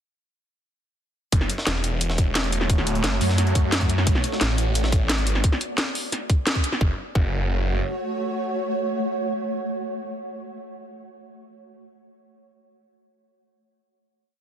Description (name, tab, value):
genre	dark technical drum and bass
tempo	175 BPM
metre	4/4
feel	straight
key	F# minor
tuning	A4 = 440 Hz
part	swarming drone	sustained chords	2.1-10.0 s	A3 to D5	-29 LUFS	right 1 dB	built-in reverb, sidechain pumping
part	snarling distorted saw bass	bass	1.3-7.8 s	E1 to F#2	-23 LUFS	equal	distortion, overdrive
part	breakbeat sampler-style drum kit	drums	1.3-5.3 s	hi-hat, snare drum	-32 LUFS	left 1 dB	none
part	drum and bass drum kit	drums	1.3-6.8 s	hi-hat, snare drum	-25 LUFS	equal	none
part	electronic kick drum	drums	1.3-7.3 s	none	-20 LUFS	equal	none
room	light reverb, digital ambience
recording	dense, heavily limited modern master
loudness	-21 LUFS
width	side -10 dB against mid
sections	1.3-6.8 drop; 6.8-9.6 final chord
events	drop 1.3-6.8; band accent 6.5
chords	1.3 F#m; 4.1 Bm; 6.8 F#m